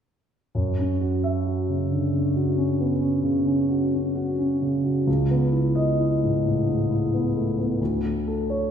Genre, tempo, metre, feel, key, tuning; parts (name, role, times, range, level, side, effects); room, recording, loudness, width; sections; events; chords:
classical, impressionist solo piano; 66 BPM; 5/4; rubato; F# minor; A4 = 439 Hz
warm concert grand piano; solo; 0.5-8.7 s; C#2 to E5; -21 LUFS; equal
wet recital hall reverb, RT60 1.3 s; recorded in a church or concert hall; -21 LUFS; side -8 dB against mid
0.5-8.7 A section
0.5 F#5; 5.1 C#m9; 7.8 D5